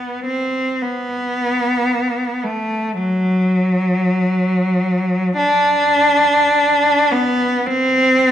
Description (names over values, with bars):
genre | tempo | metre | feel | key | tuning
classical, free, expressive piece for unaccompanied cello | free time | none | none | unclear | A4 = 440 Hz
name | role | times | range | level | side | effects
rich cello | solo | 0.0-8.3 s | F#3 to D4 | -14 LUFS | equal | none
room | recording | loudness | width
wet recital hall reverb, RT60 1.4 s | minimal, uncompressed stereo recording | -14 LUFS | side -10 dB against mid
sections
0.0-8.3 A section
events
none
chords
none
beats
free time